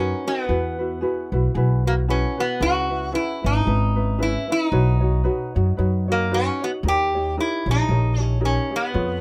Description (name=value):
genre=Hawaiian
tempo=114 BPM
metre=4/4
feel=swing 57% on 8ths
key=unclear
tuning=A4 = 442 Hz
part: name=metal-body resonator slide guitar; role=melody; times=0.0-9.2 s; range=A#3 to G4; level=-26 LUFS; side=equal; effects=none
part: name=ukulele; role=accompaniment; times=0.0-9.2 s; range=C#4 to C#5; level=-29 LUFS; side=equal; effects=none
part: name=upright bass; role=bass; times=0.0-9.2 s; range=G#1 to F#2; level=-24 LUFS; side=equal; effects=none
room=light reverb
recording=close, detailed microphones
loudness=-22 LUFS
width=mono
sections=0.0-9.2 A section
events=none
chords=0.5 Eadd9; 2.6 C#m7; 4.7 Badd9; 6.8 D#7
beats=| 0.48 1.01 1.54 2.07 | 2.60 3.13 3.66 4.19 | 4.72 5.25 5.78 6.30 | 6.83 7.36 7.89 8.41 | 8.94